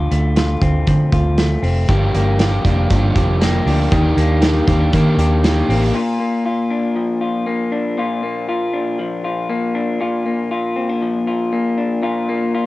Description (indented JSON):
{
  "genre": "jangly indie pop",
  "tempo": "118 BPM",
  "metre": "4/4",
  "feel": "straight",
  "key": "Bb major",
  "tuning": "A4 = 441 Hz",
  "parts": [
    { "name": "electric guitar through a small old amp", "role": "arpeggios", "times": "0.0-12.7 s", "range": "G2 to G4", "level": "-19 LUFS", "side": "left 2 dB", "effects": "cassette tape" },
    { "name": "vintage muted fingered electric bass", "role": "bass", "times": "0.0-5.9 s", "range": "F1 to Eb3", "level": "-16 LUFS", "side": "equal", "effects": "none" },
    { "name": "loose indie drum kit", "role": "drums", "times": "0.1-5.8 s", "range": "hi-hat, kick drum, snare drum", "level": "-19 LUFS", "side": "right 1 dB", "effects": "cassette tape" },
    { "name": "overdriven semi-hollow guitar", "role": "accompaniment", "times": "1.9-6.0 s", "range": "G2 to G4", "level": "-20 LUFS", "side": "right 1 dB", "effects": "cassette tape" }
  ],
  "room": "light reverb",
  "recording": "home recording on cassette",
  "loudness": "-15 LUFS",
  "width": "side -18 dB against mid",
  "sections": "0.0-5.9 A section; 5.9-12.7 B section",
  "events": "none",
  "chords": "0.0 Dm7; 1.9 Gm7; 3.9 Ebmaj7; 5.9 Bb"
}